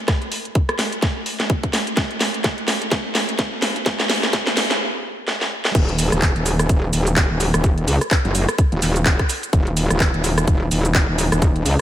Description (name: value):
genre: bass house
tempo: 127 BPM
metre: 4/4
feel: swing 58% on 16ths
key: Eb minor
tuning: A4 = 440 Hz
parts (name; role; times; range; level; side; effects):
- electronic kick drum; drums; 0.1-11.5 s; none; -18 LUFS; equal; none
- garage drum kit; drums; 0.1-11.8 s; crash cymbal, handclaps, hi-hat, rim click, shaker, snare drum; -20 LUFS; equal; none
- metallic wobble bass; bass; 5.7-11.8 s; Eb1 to Db2; -19 LUFS; equal; distortion, chorus, tube saturation, sidechain pumping
room: moderate lush hall reverb, RT60 1.6 s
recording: dreamy mix soaked in reverb, high-pass filter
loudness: -17 LUFS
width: side -12 dB against mid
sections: 0.0-5.8 A section; 5.8-11.8 B section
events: build-up 0.0-5.8; drum fill 0.0-4.8, 5.3-5.8; filter sweep 0.0-5.8; stop 4.8-5.8; drop 5.8-11.8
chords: none